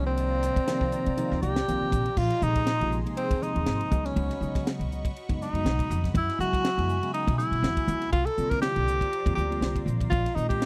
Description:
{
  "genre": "electric jazz fusion",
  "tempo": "121 BPM",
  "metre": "4/4",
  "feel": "swing 55% on 16ths",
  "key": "unclear",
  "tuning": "A4 = 440 Hz",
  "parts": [
    { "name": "warm tenor saxophone", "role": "melody", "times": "0.0-10.7 s", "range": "C4 to Bb4", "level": "-31 LUFS", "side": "equal", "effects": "none" },
    { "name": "tine electric piano", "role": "accompaniment", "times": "0.0-10.6 s", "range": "C3 to Gb4", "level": "-36 LUFS", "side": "equal", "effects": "analog chorus" },
    { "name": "phased analog pad", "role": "sustained chords", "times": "0.0-10.7 s", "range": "F3 to Db6", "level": "-42 LUFS", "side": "equal", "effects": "phaser, chorus" },
    { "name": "upright bass", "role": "bass", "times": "0.0-10.7 s", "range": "Ab1 to Gb3", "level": "-31 LUFS", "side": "equal", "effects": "none" },
    { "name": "tight funk drum kit", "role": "drums", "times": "0.2-10.7 s", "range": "crash cymbal, hi-hat, kick drum, ride cymbal, snare drum", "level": "-33 LUFS", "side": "equal", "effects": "none" }
  ],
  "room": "little or no reverb",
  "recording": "dry, close 1970s-style studio recording",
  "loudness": "-27 LUFS",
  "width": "mono",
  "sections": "0.0-2.2 A section; 2.2-10.7 B section",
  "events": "none",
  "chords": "0.0 Cm11; 2.2 Bb9sus4; 3.9 Db9sus4; 6.1 Gb9sus4; 8.1 C9sus4; 10.1 Bb9sus4"
}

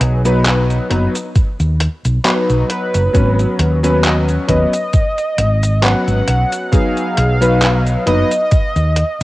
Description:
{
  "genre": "vaporwave",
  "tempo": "67 BPM",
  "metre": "4/4",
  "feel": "swing 55% on 16ths",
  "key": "B lydian",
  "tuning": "A4 = 440 Hz",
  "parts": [
    { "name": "clear electric grand piano", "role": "accompaniment", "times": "0.0-8.3 s", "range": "F#3 to B4", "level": "-17 LUFS", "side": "left 1 dB", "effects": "analog chorus, cassette tape" },
    { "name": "woody fretless electric bass", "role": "bass", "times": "0.0-9.2 s", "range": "F#1 to D#2", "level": "-15 LUFS", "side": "equal", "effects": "none" },
    { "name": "detuned 8-bit digital drum machine", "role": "drums", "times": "0.0-9.2 s", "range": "cabasa, handclaps, hi-hat", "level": "-20 LUFS", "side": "equal", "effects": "small room ambience, cassette tape" },
    { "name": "electronic kick drum", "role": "drums", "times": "1.4-8.7 s", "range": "none", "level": "-14 LUFS", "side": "equal", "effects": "small room ambience, cassette tape" },
    { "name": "warm velvety synth lead", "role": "melody", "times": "2.7-9.2 s", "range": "B4 to F#5", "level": "-20 LUFS", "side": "right 1 dB", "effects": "chorus, tape echo" }
  ],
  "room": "light reverb, digital ambience",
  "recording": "home recording on cassette",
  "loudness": "-12 LUFS",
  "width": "side -18 dB against mid",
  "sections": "0.0-9.2 A section",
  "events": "none",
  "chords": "0.0 B; 3.1 G#m7; 6.7 B6"
}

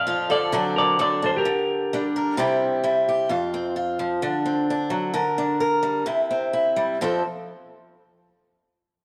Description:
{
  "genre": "highlife",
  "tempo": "130 BPM",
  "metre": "4/4",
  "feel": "swing 54% on 16ths",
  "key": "F major",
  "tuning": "A4 = 441 Hz",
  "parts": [
    { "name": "clean electric guitar", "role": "melody", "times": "0.0-2.1 s", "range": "G4 to F5", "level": "-24 LUFS", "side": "equal", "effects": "phaser" },
    { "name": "picked old ladder-braced acoustic guitar", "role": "accompaniment", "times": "0.0-7.2 s", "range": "F2 to Bb4", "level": "-24 LUFS", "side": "equal", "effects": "none" }
  ],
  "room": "wet echo chamber reverb, RT60 1.9 s, small room ambience",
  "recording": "none",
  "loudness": "-23 LUFS",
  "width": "mono",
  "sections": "0.0-3.3 A section; 3.3-7.0 B section; 7.0-8.8 C section",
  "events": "none",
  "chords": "0.0 F; 0.5 D7; 1.4 Gm/D; 2.4 C; 3.3 F5; 4.2 D7; 5.2 Gm/D; 6.1 C; 7.0 F"
}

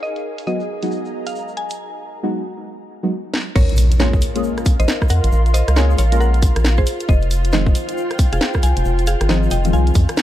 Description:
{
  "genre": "UK garage, two-step garage",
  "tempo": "136 BPM",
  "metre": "4/4",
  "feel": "swing 62% on 16ths",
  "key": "Bb minor",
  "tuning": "A4 = 440 Hz",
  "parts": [
    { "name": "mallet-like synth pluck", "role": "melody", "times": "0.0-9.9 s", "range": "Ab4 to Ab5", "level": "-27 LUFS", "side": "left 1 dB", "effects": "chorus, dub echo" },
    { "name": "soft string machine", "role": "sustained chords", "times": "0.0-10.2 s", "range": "F4 to Ab4", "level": "-31 LUFS", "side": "left 1 dB", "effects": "ensemble chorus, sidechain pumping" },
    { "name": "egg shaker", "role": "percussion", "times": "0.0-10.2 s", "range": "none", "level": "-39 LUFS", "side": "right 4 dB", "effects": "none" },
    { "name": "ethereal airy pad", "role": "texture", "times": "0.0-10.2 s", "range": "Eb4 to C6", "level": "-29 LUFS", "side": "equal", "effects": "ensemble chorus, built-in reverb, sidechain pumping" },
    { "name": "garage drum kit", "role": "drums", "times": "0.2-10.2 s", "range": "crash cymbal, hi-hat, rim click, snare drum", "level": "-23 LUFS", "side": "equal", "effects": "small room ambience" },
    { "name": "deep mellow chord stab", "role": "stabs", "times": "0.5-10.2 s", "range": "Eb3 to Bb4", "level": "-23 LUFS", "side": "left 1 dB", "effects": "chorus, phaser, dub echo" },
    { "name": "rubbery square bass", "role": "bass", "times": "3.6-10.1 s", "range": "F1 to F2", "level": "-16 LUFS", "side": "equal", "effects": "none" },
    { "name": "electronic kick drum", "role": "drums", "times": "3.6-10.1 s", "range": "none", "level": "-15 LUFS", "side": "equal", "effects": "small room ambience" },
    { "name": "impact", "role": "sound effects", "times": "3.6-5.3 s", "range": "none", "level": "-25 LUFS", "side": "equal", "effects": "none" }
  ],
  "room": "little or no reverb",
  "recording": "dark, warm production, low-pass filter",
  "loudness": "-15 LUFS",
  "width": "side -13 dB against mid",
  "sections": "0.0-3.6 A section; 3.6-10.2 B section",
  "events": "drum fill 3.3; drop 3.6-10.2; impact 3.6-5.3",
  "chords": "0.0 Abm7; 3.6 Bbm7; 6.9 Fm7"
}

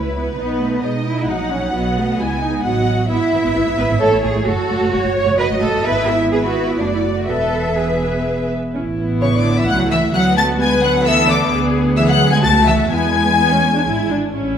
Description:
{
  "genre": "quick classical-period movement for string orchestra",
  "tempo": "130 BPM",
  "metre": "3/4",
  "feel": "rubato",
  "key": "unclear",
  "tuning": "A4 = 440 Hz",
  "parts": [
    { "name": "warm studio violin section", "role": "melody", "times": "0.0-14.1 s", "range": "B4 to A6", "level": "-24 LUFS", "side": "left 5 dB", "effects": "none" },
    { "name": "warm studio violin section", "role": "second line", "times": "0.0-14.1 s", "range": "A4 to A5", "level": "-21 LUFS", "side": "left 3 dB", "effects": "none" },
    { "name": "rich studio viola section", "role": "accompaniment", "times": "0.0-14.6 s", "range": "F#3 to B4", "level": "-20 LUFS", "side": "right 1 dB", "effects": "none" },
    { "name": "warm studio cello section", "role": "bass", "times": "0.0-14.1 s", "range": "C#3 to C#5", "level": "-21 LUFS", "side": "right 2 dB", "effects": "none" },
    { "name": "warm studio double bass section", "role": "bass", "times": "0.0-14.6 s", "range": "E1 to B2", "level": "-21 LUFS", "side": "right 2 dB", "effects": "none" }
  ],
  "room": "wet scoring stage reverb, RT60 1.6 s",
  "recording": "none",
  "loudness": "-14 LUFS",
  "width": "side -8 dB against mid",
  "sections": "0.0-8.8 A section; 8.8-14.6 B section",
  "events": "none",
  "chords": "0.4 B; 1.3 F#/A#; 1.7 B; 3.1 E/G#; 4.0 A; 4.5 F#m; 5.4 B7/F# (rootless); 5.9 E/G#; 6.8 D/F#; 7.3 E; 8.8 A; 10.1 Bm/D; 11.5 E7/D (rootless); 12.4 A/C#; 12.9 E"
}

